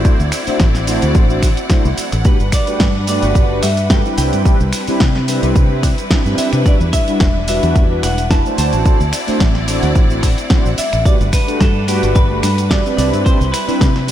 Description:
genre	nu-disco, nu disco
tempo	109 BPM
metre	4/4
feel	swing 54% on 16ths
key	G major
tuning	A4 = 440 Hz
part	mellow synth brass	accompaniment	0.0-14.1 s	G3 to C5	-20 LUFS	equal	chorus, sidechain pumping, diffuse ambient delay
part	clear symphonic string section	sustained chords	0.0-14.1 s	G3 to F#5	-24 LUFS	left 1 dB	sidechain pumping
part	fingered electric bass	bass	0.0-14.1 s	E1 to C3	-18 LUFS	equal	none
part	electronic kick drum	drums	0.0-13.9 s	none	-13 LUFS	equal	studio reverb
part	house drum kit	drums	0.0-14.1 s	finger snaps, hi-hat, shaker, snare drum	-22 LUFS	equal	studio reverb
part	semi-hollow electric guitar	melody	2.3-14.1 s	G4 to A5	-22 LUFS	right 1 dB	tape echo
room	light reverb, digital ambience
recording	none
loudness	-12 LUFS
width	side -11 dB against mid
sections	0.0-14.1 A section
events	none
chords	0.0 D9; 2.3 Gmaj7; 4.2 Cmaj7; 6.7 Em7; 8.6 D9; 11.1 Gmaj7; 13.0 Cmaj7

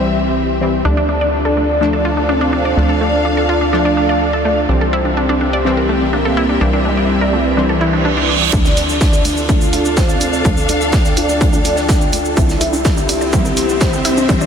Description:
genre	melodic techno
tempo	125 BPM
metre	4/4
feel	straight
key	D minor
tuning	A4 = 440 Hz
part	evolving wavetable pad	sustained chords	0.0-14.5 s	C4 to G5	-22 LUFS	right 1 dB	phaser, built-in reverb, sidechain pumping
part	synth brass stab	stabs	0.0-14.5 s	E3 to D4	-22 LUFS	left 2 dB	chorus, sidechain pumping, analog delay
part	tight sequencer bass	bass	0.0-14.5 s	C2 to D2	-21 LUFS	equal	tube saturation, sidechain pumping
part	warm studio string section	texture	0.0-14.5 s	C4 to F5	-24 LUFS	left 1 dB	sidechain pumping
part	fat analog lead	melody	0.8-14.5 s	E3 to E4	-19 LUFS	equal	analog chorus, sidechain pumping, analog delay
part	wide unison pluck	arpeggios	0.8-14.4 s	A3 to D5	-21 LUFS	equal	sidechain pumping, analog delay
part	reverse cymbal and riser	sound effects	7.8-14.5 s	none	-23 LUFS	right 4 dB	none
part	electronic kick drum	drums	8.5-14.4 s	none	-14 LUFS	equal	overdrive
part	electronic shaker and hi-hat	drums	8.5-14.5 s	none	-23 LUFS	right 2 dB	high-pass filter on perc, low-pass filter on perc, high-pass filter on hats, low-pass filter on hats
part	huge arena drum kit	drums	8.5-14.4 s	hi-hat, snare drum	-29 LUFS	right 2 dB	none
room	wet huge ambient reverb, RT60 7.7 s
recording	dreamy mix soaked in reverb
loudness	-12 LUFS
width	side -7 dB against mid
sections	0.0-8.5 A section; 8.5-14.5 B section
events	filter sweep on ambient pad 0.0-8.5; reverse cymbal 7.8-8.5; build-up 8.5-14.5; riser 8.5-14.5; filter sweep on analog synth lead 8.5-14.5; filter sweep on synth stab 8.5-14.5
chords	0.0 C; 0.8 Dm; 4.7 C; 8.5 Dm; 12.4 C

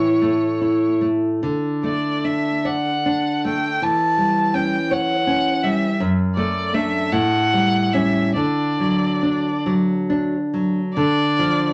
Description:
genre	romantic duo for violin and classical guitar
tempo	46-56 BPM (dotted quarters)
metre	6/8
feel	rubato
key	D major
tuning	A4 = 441 Hz
part	rich violin	melody	0.0-11.7 s	C#5 to A5	-24 LUFS	equal	none
part	nylon-string guitar	accompaniment	0.0-11.7 s	F#2 to D5	-21 LUFS	equal	none
room	wet studio ambience, RT60 0.4 s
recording	none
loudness	-20 LUFS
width	mono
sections	0.0-11.0 A section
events	none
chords	0.0 A; 1.4 D; 3.8 C#dim/E; 6.0 D/F#; 7.1 A7; 8.4 D; 11.0 Dm

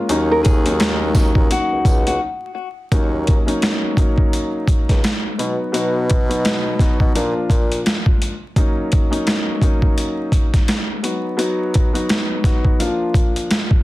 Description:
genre	hip hop, boom-bap hip-hop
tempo	85 BPM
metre	4/4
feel	swing 59% on 16ths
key	Eb minor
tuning	A4 = 441 Hz
part	dark upright piano	accompaniment	0.0-13.8 s	F3 to F#4	-22 LUFS	left 1 dB	cassette tape, high-pass filter, low-pass filter
part	warm bassoon	bass	0.1-7.8 s	Db2 to B2	-22 LUFS	equal	none
part	boom bap sampler-style drum kit	drums	0.1-13.8 s	hi-hat, kick drum, snare drum	-16 LUFS	equal	overdrive
part	nylon-string guitar	melody	0.3-2.2 s	Gb4 to Bb4	-21 LUFS	left 2 dB	high-pass filter, low-pass filter, ping-pong delay
part	tambourine	percussion	0.4-2.0 s	none	-36 LUFS	right 5 dB	none
room	light reverb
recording	dense, heavily limited modern master, vinyl crackle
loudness	-15 LUFS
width	side -18 dB against mid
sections	0.0-2.9 A section; 2.9-13.8 B section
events	break 2.2-2.9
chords	0.1 Ebm7; 5.4 B; 7.2 Bb; 8.6 Ebm7; 11.0 B; 12.8 Bb

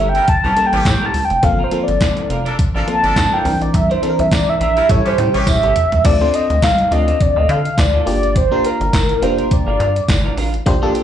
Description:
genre	early-eighties boogie funk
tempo	104 BPM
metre	4/4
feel	swing 56% on 16ths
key	unclear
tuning	A4 = 439 Hz
part	mellow horn-like synth lead	melody	0.0-10.4 s	Bb4 to A5	-16 LUFS	equal	chorus, slapback echo
part	FM electric piano	accompaniment	0.0-11.0 s	E3 to D5	-21 LUFS	left 2 dB	chorus, slapback echo
part	semi-hollow electric guitar	riff	0.0-11.0 s	C4 to C5	-28 LUFS	right 6 dB	lush chorus, slapback echo
part	rubbery square bass	bass	0.0-10.9 s	F1 to D3	-19 LUFS	equal	none
part	clear horn section	second line	0.1-5.7 s	E3 to Bb4	-24 LUFS	equal	slapback echo
part	clean 12-bit digital drum machine	drums	0.1-11.0 s	crash cymbal, handclaps, hi-hat, kick drum, snare drum, toms	-18 LUFS	equal	none
part	tambourine	percussion	0.9-10.2 s	none	-28 LUFS	right 3 dB	none
room	light reverb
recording	live gig heard through the venue's PA, club reverb, nothing above 10.6 kHz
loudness	-13 LUFS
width	side -10 dB against mid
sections	0.0-6.0 A section; 6.0-11.0 B section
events	soft synth lead solo 0.0-6.0; drum fill 4.9-6.0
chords	0.0 A7b9; 1.4 Gm11; 3.5 C9; 4.9 A7; 6.0 Dm7; 8.1 Gm7

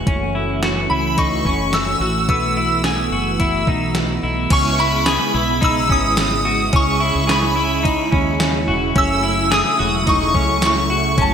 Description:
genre	dream pop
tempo	108 BPM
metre	4/4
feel	straight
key	C# minor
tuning	A4 = 440 Hz
part	warm analog pad	sustained chords	0.0-11.3 s	C#3 to F#4	-22 LUFS	right 2 dB	chorus
part	semi-hollow electric guitar	arpeggios	0.0-11.3 s	B3 to G#4	-22 LUFS	left 2 dB	lush chorus, ping-pong delay
part	woody fretless electric bass	bass	0.0-11.3 s	E1 to D#2	-24 LUFS	equal	analog chorus
part	gated 80s digital drum machine	drums	0.1-11.3 s	crash cymbal, hi-hat, kick drum, ride cymbal, snare drum, tambourine	-22 LUFS	equal	gated reverb, gated reverb snare, overdrive
part	shimmering bell with halo	melody	0.9-11.3 s	A5 to E6	-20 LUFS	equal	ensemble chorus
room	wet lush hall reverb, RT60 2.3 s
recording	bright 1980s-style digital production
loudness	-15 LUFS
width	side -8 dB against mid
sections	0.0-4.5 A section; 4.5-11.3 B section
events	none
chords	0.1 F#m7; 2.3 B7sus4; 4.5 C#m7; 9.0 F#m7

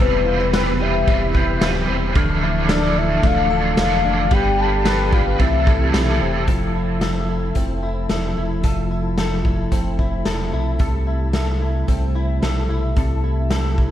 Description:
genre	dream pop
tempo	111 BPM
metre	4/4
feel	straight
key	unclear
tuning	A4 = 444 Hz
part	soft octave-layered synth lead	melody	0.0-6.2 s	B4 to A5	-23 LUFS	left 4 dB	chorus, phaser, analog delay, shimmer reverb
part	overdriven electric guitar	accompaniment	0.0-6.5 s	C3 to B4	-25 LUFS	right 4 dB	tremolo, ensemble chorus, analog delay, shimmer reverb
part	mellow tonewheel organ	sustained chords	0.0-13.9 s	C3 to G4	-26 LUFS	right 2 dB	chorus vibrato, slow rotary speaker
part	direct-recorded clean electric guitar	arpeggios	0.0-13.9 s	C3 to B4	-25 LUFS	left 3 dB	ensemble chorus, analog delay, shimmer reverb
part	sub bass with octave	bass	0.0-13.9 s	D1 to C2	-23 LUFS	equal	none
part	raw garage drum kit	drums	0.0-13.9 s	hi-hat, kick drum, ride cymbal, snare drum, tambourine	-22 LUFS	equal	none
part	glockenspiel with rubber mallets	texture	0.0-3.4 s	E6 to G6	-34 LUFS	left 1 dB	none
room	light reverb, studio reverb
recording	echo-heavy mix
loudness	-17 LUFS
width	side -11 dB against mid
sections	0.0-6.5 A section; 6.5-13.9 B section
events	none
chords	0.0 Cmaj7/E; 2.2 Dmadd9; 4.3 G; 5.4 C6; 6.5 Fmaj7; 10.8 C6

